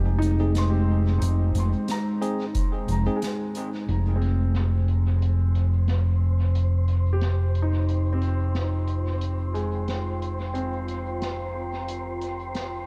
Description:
ambient dub; 90 BPM; 4/4; swing 55% on 16ths; F minor; A4 = 440 Hz
deep dark ambient pad; sustained chords; 0.0-12.9 s; Ab3 to Bb5; -36 LUFS; equal; chorus, built-in reverb
felt-muted upright piano; arpeggios; 0.0-12.9 s; Ab3 to C6; -36 LUFS; equal; low-pass filter, tape echo
overdriven fingered electric bass; bass; 0.0-12.9 s; F1; -25 LUFS; equal
soft-mallet drum kit; drums; 0.2-12.7 s; hi-hat, snare drum; -40 LUFS; equal; low-pass filter on hats, low-pass filter on snare, low-pass filter on room, dub echo
tine electric piano; stabs; 0.4-3.2 s; C4 to Ab4; -36 LUFS; equal; dub echo
electronic kick drum; drums; 2.5-2.7 s; -29 LUFS; equal
wind-like tuned noise texture; texture; 4.8-12.9 s; C5; -41 LUFS; equal; built-in reverb
little or no reverb; echo-heavy mix; -25 LUFS; mono
0.0-3.9 A section; 3.9-12.9 B section
0.0 Fm9

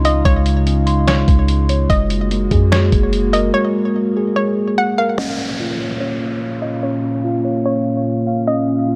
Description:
hip hop, atmospheric cloud-rap; 146 BPM; 4/4; half-time; A4 = 436 Hz
dark analog pad; sustained chords; 0.0-9.0 s; Bb2 to F5; -22 LUFS; equal; chorus, sidechain pumping, low-pass filter
muted felt-like synth keys; arpeggios; 0.0-9.0 s; Ab3 to C6; -24 LUFS; equal; chorus, low-pass filter, delay
soft 808-style bass; bass; 0.0-3.5 s; Gb1 to Gb2; -19 LUFS; equal
lo-fi sampler-style drum kit; drums; 0.0-3.4 s; hi-hat, kick drum, snare drum; -20 LUFS; equal
hollow square pluck; melody; 0.1-9.0 s; Db5 to Gb5; -25 LUFS; equal; chorus, low-pass filter, delay
downlifter; sound effects; 5.2-8.5 s; -32 LUFS; equal
light reverb; -17 LUFS; mono
0.0-5.2 A section; 5.2-9.0 B section
break 3.5-5.2; filter sweep 5.2-9.0
0.0 Dbmaj7; 1.9 Gbadd9; 5.2 Bbm

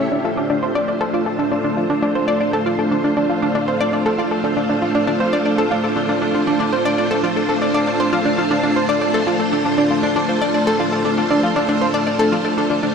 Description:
ambient, sequencer-driven space music; 118 BPM; 4/4; straight; D minor; A4 = 441 Hz
string machine, full ensemble; sustained chords; 0.0-12.9 s; A3 to C5; -19 LUFS; equal; ensemble chorus
analog pluck; riff; 0.0-12.9 s; C#4 to D5; -19 LUFS; equal; chorus, ping-pong delay
wind-like tuned noise texture; texture; 0.0-12.9 s; G4 to A5; -27 LUFS; right 2 dB; built-in reverb
wet echo chamber reverb, RT60 2.2 s; echo-heavy mix; -16 LUFS; side -6 dB against mid
0.1-12.9 A section
0.1 Dm7

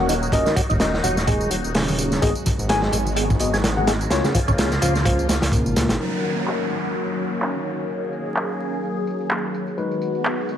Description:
breakbeat, breaks; 127 BPM; 4/4; swing 56% on 16ths; Eb minor; A4 = 440 Hz
phased analog pad; sustained chords; 0.0-10.6 s; Db3 to Ab4; -27 LUFS; equal; phaser, chorus, sidechain pumping
mellow tine electric piano; stabs; 0.0-10.6 s; Gb3 to Ab5; -27 LUFS; left 3 dB; lush chorus, low-pass filter, digital delay
detuned saw bass; bass; 0.0-6.0 s; Eb1 to Db2; -24 LUFS; equal
percussive tonewheel organ; riff; 0.1-6.0 s; Bb2 to Ab4; -26 LUFS; equal; slow rotary speaker, digital delay
crunchy breakbeat drum kit; drums; 0.1-6.0 s; hi-hat, kick drum, snare drum; -22 LUFS; equal
electronic tambourine and handclaps; drums; 0.1-10.6 s; -29 LUFS; right 1 dB; overdrive, low-pass filter on perc, low-pass filter on snare
congas; percussion; 0.6-5.7 s; -32 LUFS; left 2 dB
downlifter; sound effects; 6.0-9.8 s; -31 LUFS; right 2 dB
light reverb, small room ambience; vinyl crackle; -19 LUFS; side -10 dB against mid
0.0-6.0 A section; 6.0-10.6 B section
filter sweep on drum 6.0-10.6; filter sweep on tine electric piano 6.0-10.6
0.0 Ebm7; 2.2 Abm7; 4.1 Db6; 6.0 Ebm7; 9.8 Abm7

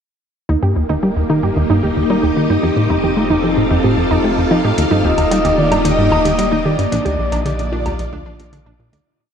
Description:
ambient, sequencer-driven space music; 112 BPM; 4/4; straight; Eb lydian; A4 = 440 Hz
string machine, full ensemble; sustained chords; 0.5-9.1 s; Bb3 to F5; -19 LUFS; equal; ensemble chorus, shimmer reverb
wide unison pluck; arpeggios; 0.5-9.1 s; D4 to D5; -21 LUFS; right 2 dB; auto-pan, shimmer reverb, tape echo
plucky analog bass; riff; 0.5-9.0 s; Bb1 to A3; -17 LUFS; equal; tape echo
warm sub bass; bass; 0.5-9.0 s; Eb1 to Bb1; -27 LUFS; equal
wind-like tuned noise texture; texture; 1.3-9.1 s; Eb4 to D6; -24 LUFS; left 3 dB; built-in reverb, shimmer reverb
electronic hi-hat and woodblock; percussion; 4.8-9.0 s; -26 LUFS; equal
breathy flute-like synth lead; melody; 5.0-8.8 s; D5 to Eb5; -19 LUFS; left 1 dB; chorus, shimmer reverb, tape echo
wet huge ambient reverb, RT60 7.7 s; dark, warm production; -13 LUFS; side -7 dB against mid
0.5-9.1 A section
fade-in on sub bass 0.5-9.1; fade-out 6.2-9.1
0.5 Eb; 2.6 F; 4.8 Eb; 6.9 Bb

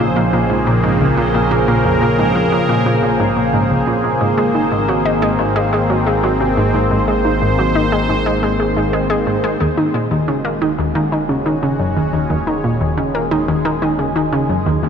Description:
ambient, sequencer-driven space music; 89 BPM; 4/4; straight; Eb dorian; A4 = 440 Hz
sweeping resonant pad; sustained chords; 0.0-14.9 s; Db3 to Eb5; -17 LUFS; equal; chorus, shimmer reverb
analog pluck; riff; 0.0-14.9 s; Db2 to Eb4; -17 LUFS; equal; chorus, cassette tape, tape echo, shimmer reverb
fat analog bass; bass; 0.0-14.9 s; Eb1 to Bb1; -26 LUFS; equal
bubbling stepped-filter texture; texture; 0.0-14.9 s; Ab3 to C5; -25 LUFS; equal; chorus, built-in reverb, shimmer reverb
wet cathedral reverb, RT60 6.2 s; dreamy mix soaked in reverb; -14 LUFS; side -7 dB against mid
0.0-9.6 A section; 9.6-14.9 B section
0.0 Bbm7; 4.2 Abadd9; 9.6 Ebm7

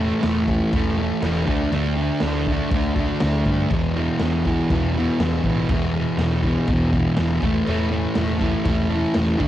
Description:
garage rock duo or trio; 121 BPM; 4/4; straight; A4 = 438 Hz
fuzz guitar; riff; 0.0-9.5 s; E2 to D4; -20 LUFS; equal; distortion, cassette tape
hollow-body short-scale picked electric bass; bass; 0.0-9.5 s; E1 to G2; -25 LUFS; equal
raw garage drum kit; drums; 0.2-9.5 s; crash cymbal, kick drum, snare drum; -26 LUFS; equal; cassette tape
light reverb; home recording on cassette; -18 LUFS; side -12 dB against mid
0.0-9.5 A section
0.0 A5/E; 1.5 D5; 3.7 E5; 7.4 A5/E

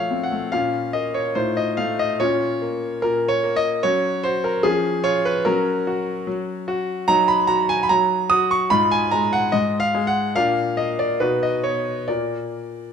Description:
classical-period piano sonatina; 73 BPM; 2/4; rubato; Bb minor, Eb minor from 7.1 s; A4 = 440 Hz
clear concert grand piano; solo; 0.0-12.9 s; Ab2 to Eb6; -18 LUFS; equal
light reverb; close, detailed microphones; -18 LUFS; side -7 dB against mid
0.5-12.9 A section
0.0 F; 0.5 Bbm; 1.4 F7/A; 2.2 Bbm; 3.8 Gb5; 4.6 Db/F; 5.4 Gb; 7.1 Ebm/Gb; 8.7 Abm13; 10.4 Bb; 11.2 B; 12.1 N.C.

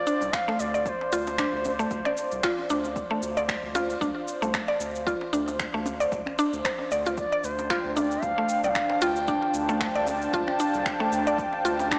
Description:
organic downtempo; 114 BPM; 4/4; swing 56% on 16ths; D minor pentatonic; A4 = 440 Hz
bright reedy bansuri; melody; 0.0-2.7, 7.2-9.5 s; C5 to G5; -30 LUFS; equal; digital delay
warm analog pad; sustained chords; 0.0-12.0 s; D4 to A5; -30 LUFS; equal; chorus, sidechain pumping
mallet-like synth pluck; arpeggios; 0.1-12.0 s; A3 to D5; -27 LUFS; equal; chorus, tape echo
electronic shaker and finger snaps; drums; 0.1-12.0 s; -33 LUFS; equal; overdrive, studio ambience, soft clipping on snare
round analog bass; bass; 0.2-12.0 s; C2 to D2; -38 LUFS; equal
djembe; percussion; 0.2-11.9 s; -38 LUFS; equal
electronic kick drum; drums; 0.3-12.0 s; -39 LUFS; equal; overdrive, studio ambience
moderate lush hall reverb, RT60 2.5 s; blown-out, overdriven recording, overdrive, small speaker sound; -24 LUFS; side -38 dB against mid
0.0-12.0 A section
0.0 Dm7

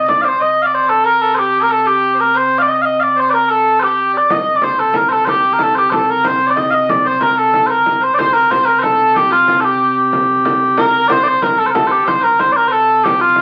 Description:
medieval dance; 123 BPM (dotted quarters); 6/8; straight; C dorian; A4 = 439 Hz
mellow small bagpipes; melody; 0.0-13.4 s; F4 to F5; -14 LUFS; equal
clear shawm; second line; 0.0-13.4 s; F4 to Eb5; -23 LUFS; equal
rich viola da gamba; drone; 0.0-13.4 s; C3; -29 LUFS; equal
frame drum; percussion; 0.1-0.2, 4.3-13.4 s; -26 LUFS; equal
wet studio reverb, RT60 0.5 s; very old 78 rpm record, vinyl crackle; -14 LUFS; mono
0.4-8.2 A section; 8.2-13.4 B section

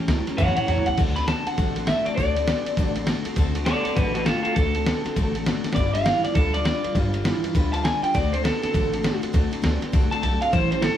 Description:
rockabilly; 201 BPM; 4/4; swing 62% on 8ths; D mixolydian; A4 = 440 Hz
picked steel-string acoustic guitar; accompaniment; 0.0-11.0 s; A2 to B4; -31 LUFS; left 2 dB
electric guitar through a small old amp; riff; 0.0-11.0 s; G2 to B3; -29 LUFS; left 1 dB; harmonic tremolo
upright bass; bass; 0.1-10.9 s; G1 to F#2; -26 LUFS; equal
lo-fi sampler-style drum kit; drums; 0.1-10.9 s; crash cymbal, kick drum, ride cymbal, snare drum, toms; -25 LUFS; equal
electric guitar through a small old amp; melody; 0.4-11.0 s; F4 to B5; -24 LUFS; equal
moderate studio reverb, RT60 0.6 s; band playing live in one room; -20 LUFS; side -10 dB against mid
1.0-11.0 A section
drum fill 0.4-1.0, 5.6; clean electric guitar solo 1.0-11.0; kick and snare drop out 10.2
0.0 A7; 1.0 D7; 5.8 G7; 8.1 D7

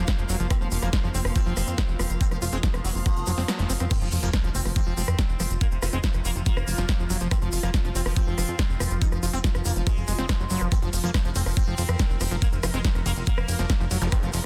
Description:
psychedelic trance; 141 BPM; 4/4; straight; A4 = 440 Hz
sitar; melody; 0.0-14.4 s; C3 to Eb4; -38 LUFS; equal; phaser, sidechain pumping, digital delay
evolving wavetable pad; sustained chords; 0.1-14.5 s; F3 to Bb4; -39 LUFS; equal; phaser, built-in reverb, sidechain pumping
overdriven acid bass; riff; 0.0-14.3 s; Eb3 to F4; -36 LUFS; equal; sidechain pumping, digital delay
plucky analog bass; bass; 0.0-14.4 s; F1 to F2; -29 LUFS; equal
warm chamber string section; texture; 0.0-3.9 s; F4 to F5; -43 LUFS; equal; sidechain pumping
big-room dance drum kit; drums; 0.1-14.4 s; crash cymbal, hi-hat, ride cymbal, rim click, snare drum; -34 LUFS; equal; overdrive
electronic kick drum; drums; 0.1-14.2 s; -26 LUFS; equal
tube shaker; percussion; 0.1-14.4 s; -42 LUFS; equal
sub drop and zap; sound effects; 4.0-5.6, 14.0-14.1 s; -38 LUFS; equal
little or no reverb; dense, heavily limited modern master; -25 LUFS; mono
0.0-3.9 A section; 3.9-14.5 B section
kick drops out 3.5-3.9; band accent 3.5; drop 3.9-14.5; impact 3.9-5.6
0.0 F5

